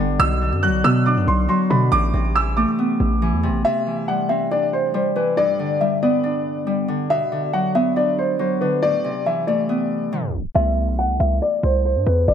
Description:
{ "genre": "hip hop, drill", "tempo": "139 BPM", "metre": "4/4", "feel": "half-time", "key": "unclear", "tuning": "A4 = 445 Hz", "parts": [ { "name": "dark grand piano", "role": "melody", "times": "0.0-12.3 s", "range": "B4 to F#6", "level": "-21 LUFS", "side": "equal", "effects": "low-pass filter, ping-pong delay" }, { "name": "Celtic harp", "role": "accompaniment", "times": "0.0-12.3 s", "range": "G2 to D4", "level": "-22 LUFS", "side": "left 1 dB", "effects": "none" }, { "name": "hard-hitting 808-style bass", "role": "bass", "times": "0.0-3.6, 10.6-12.3 s", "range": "G1 to B2", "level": "-20 LUFS", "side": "equal", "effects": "none" } ], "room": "light reverb, studio reverb", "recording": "tape stop", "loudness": "-17 LUFS", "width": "side -8 dB against mid", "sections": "0.0-3.6 A section; 3.6-10.6 B section; 10.6-12.3 C section", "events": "tape stop 10.1-10.6; filter sweep on grand piano 10.6-12.3", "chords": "0.2 Bm; 1.9 Amadd9; 3.6 Cadd9; 5.4 G; 7.1 Bm; 8.8 Amadd9; 10.6 C" }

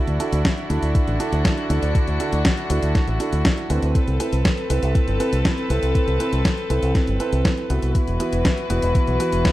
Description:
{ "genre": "italo disco", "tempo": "120 BPM", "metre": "4/4", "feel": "straight", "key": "A dorian", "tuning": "A4 = 443 Hz", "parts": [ { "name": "rich chamber string section", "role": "sustained chords", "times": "0.0-9.5 s", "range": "D3 to B4", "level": "-26 LUFS", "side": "left 1 dB", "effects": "none" }, { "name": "dark grand piano", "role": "stabs", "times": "0.0-9.5 s", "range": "B3 to B4", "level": "-26 LUFS", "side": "right 3 dB", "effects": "low-pass filter, tape echo" }, { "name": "fingered electric bass with an envelope filter", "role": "bass", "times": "0.1-9.4 s", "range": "E1 to D2", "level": "-22 LUFS", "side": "equal", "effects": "none" }, { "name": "detuned 8-bit digital drum machine", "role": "drums", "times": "0.1-9.5 s", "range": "hi-hat, snare drum", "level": "-24 LUFS", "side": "equal", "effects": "studio reverb" }, { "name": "electronic kick drum", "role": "drums", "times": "0.5-9.5 s", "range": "none", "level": "-20 LUFS", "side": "equal", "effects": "studio reverb" } ], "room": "studio reverb", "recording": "dry, close 1970s-style studio recording", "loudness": "-18 LUFS", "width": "side -16 dB against mid", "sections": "0.0-9.5 A section", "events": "none", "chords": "0.0 Amadd9; 8.0 Esus2" }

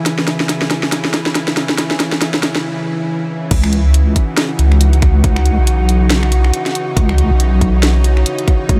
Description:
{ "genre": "deep dubstep", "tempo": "139 BPM", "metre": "4/4", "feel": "swing 58% on 16ths, half-time", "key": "C# minor", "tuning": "A4 = 440 Hz", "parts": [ { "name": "bowed-like drone", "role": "sustained chords", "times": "0.0-8.8 s", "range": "C#3 to E4", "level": "-24 LUFS", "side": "equal", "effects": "built-in reverb" }, { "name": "wind-like tuned noise texture", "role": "texture", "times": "0.0-8.8 s", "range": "E3 to G#5", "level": "-27 LUFS", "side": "equal", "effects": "built-in reverb" }, { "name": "garage drum kit", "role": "drums", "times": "0.1-8.8 s", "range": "crash cymbal, finger snaps, hi-hat, snare drum", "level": "-20 LUFS", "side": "equal", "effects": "overdrive" }, { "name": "deep soft wobble bass", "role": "bass", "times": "3.5-8.8 s", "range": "B1 to C#2", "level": "-14 LUFS", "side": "equal", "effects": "chorus" }, { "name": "electronic kick drum", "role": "drums", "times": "3.5-8.8 s", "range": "none", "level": "-16 LUFS", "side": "equal", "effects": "overdrive" } ], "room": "light reverb", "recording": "none", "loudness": "-14 LUFS", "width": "mono", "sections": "0.0-3.5 A section; 3.5-8.8 B section", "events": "build-up 0.0-3.5; drum fill 0.0-2.6; break 2.6-3.5; drop 3.5-8.8", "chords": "0.0 C#m; 3.5 C#madd9" }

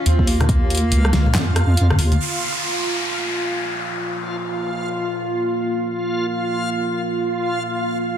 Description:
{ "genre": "deep dubstep", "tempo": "free time", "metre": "none", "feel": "none", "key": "Bb minor", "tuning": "A4 = 440 Hz", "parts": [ { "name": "rich cello", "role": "melody", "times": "0.0-1.8 s", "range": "Bb3 to C4", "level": "-29 LUFS", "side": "equal", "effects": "dub echo" }, { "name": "backwards swelling texture", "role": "texture", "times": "0.0-8.2 s", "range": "F4", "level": "-25 LUFS", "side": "right 2 dB", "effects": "built-in reverb" }, { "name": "deep soft wobble bass", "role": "bass", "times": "0.1-2.2 s", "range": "Db2 to F2", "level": "-16 LUFS", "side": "equal", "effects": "chorus, tube saturation" }, { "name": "deep house drum kit", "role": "drums", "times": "0.1-2.2 s", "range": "handclaps, hi-hat, rim click, snare drum", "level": "-23 LUFS", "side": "equal", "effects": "soft clipping on snare" }, { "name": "electronic kick drum", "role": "drums", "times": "0.2-0.6 s", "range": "none", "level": "-19 LUFS", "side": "equal", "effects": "none" }, { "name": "congas", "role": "percussion", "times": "0.4-2.2 s", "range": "none", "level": "-25 LUFS", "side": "left 3 dB", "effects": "none" }, { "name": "deep dark ambient pad", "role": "sustained chords", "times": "3.6-8.2 s", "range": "Bb3 to F4", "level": "-25 LUFS", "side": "equal", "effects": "chorus, built-in reverb" }, { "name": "downlifter", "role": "sound effects", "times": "2.2-5.6 s", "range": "none", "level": "-25 LUFS", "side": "equal", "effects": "none" } ], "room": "moderate echo chamber reverb, RT60 1.5 s, digital ambience", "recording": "dense, heavily limited modern master", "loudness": "-18 LUFS", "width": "side -9 dB against mid", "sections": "0.0-2.2 A section; 2.2-8.2 B section", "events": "drop 0.0-2.2", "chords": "0.0 Ebsus2; 2.2 Bb5" }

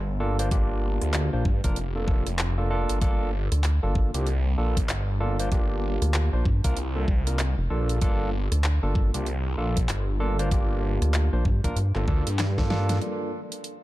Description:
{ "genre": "glitch hop", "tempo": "96 BPM", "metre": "4/4", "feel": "swing 61% on 16ths", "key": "G minor", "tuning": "A4 = 440 Hz", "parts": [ { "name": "phased detuned saw bass", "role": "bass", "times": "0.0-13.0 s", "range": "F1 to G2", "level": "-26 LUFS", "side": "equal", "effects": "phaser" }, { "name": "barky tine electric piano", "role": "stabs", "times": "0.2-13.3 s", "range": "G2 to C5", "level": "-31 LUFS", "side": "right 1 dB", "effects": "sidechain pumping, low-pass filter, digital delay" }, { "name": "dubstep drum kit", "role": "drums", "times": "0.4-13.8 s", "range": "handclaps, hi-hat, rim click, snare drum", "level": "-32 LUFS", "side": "equal", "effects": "overdrive" }, { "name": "electronic kick drum", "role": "drums", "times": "0.5-12.7 s", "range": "none", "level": "-24 LUFS", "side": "equal", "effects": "overdrive" }, { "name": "rubbery square bass", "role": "bass", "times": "3.5-11.9 s", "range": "F1 to G2", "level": "-23 LUFS", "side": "equal", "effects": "none" } ], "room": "digital ambience", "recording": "dark, warm production", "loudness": "-22 LUFS", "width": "side -16 dB against mid", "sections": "0.0-13.0 A section", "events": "drum fill 12.1-13.0; band accent 12.9-13.2", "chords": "0.0 Gm9" }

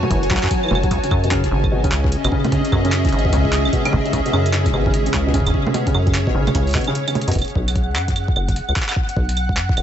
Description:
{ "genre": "IDM", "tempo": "149 BPM", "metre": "4/4", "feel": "swing 62% on 16ths", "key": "F# dorian", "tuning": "A4 = 440 Hz", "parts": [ { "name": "granular cloud pad", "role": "sustained chords", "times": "0.0-7.4 s", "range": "C#4 to A5", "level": "-23 LUFS", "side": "equal", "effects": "built-in reverb" }, { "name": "felt-muted upright piano", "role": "arpeggios", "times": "0.0-7.3 s", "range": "B2 to F#3", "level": "-23 LUFS", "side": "equal", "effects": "ping-pong delay" }, { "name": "deep acid bass", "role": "bass", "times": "0.0-9.8 s", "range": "F#1 to F#2", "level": "-20 LUFS", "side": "equal", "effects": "none" }, { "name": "jungle sampler-style drum kit", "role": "drums", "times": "0.0-9.8 s", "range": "claves, congas, handclaps, hi-hat", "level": "-24 LUFS", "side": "right 2 dB", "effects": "overdrive, ping-pong delay" }, { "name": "electronic kick drum", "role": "drums", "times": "0.1-9.8 s", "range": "none", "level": "-21 LUFS", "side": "equal", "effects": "overdrive" }, { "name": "flickering grainy texture", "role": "texture", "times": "7.7-9.8 s", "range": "F#5", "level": "-28 LUFS", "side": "left 1 dB", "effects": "built-in reverb, sidechain pumping" } ], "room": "little or no reverb", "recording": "nothing above 8.0 kHz", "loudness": "-16 LUFS", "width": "side -10 dB against mid", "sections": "0.0-7.4 A section; 7.4-9.8 B section", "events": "break 7.0-7.4; drum fill 7.2", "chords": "0.0 F#m7; 0.9 C#madd9; 7.4 F#5" }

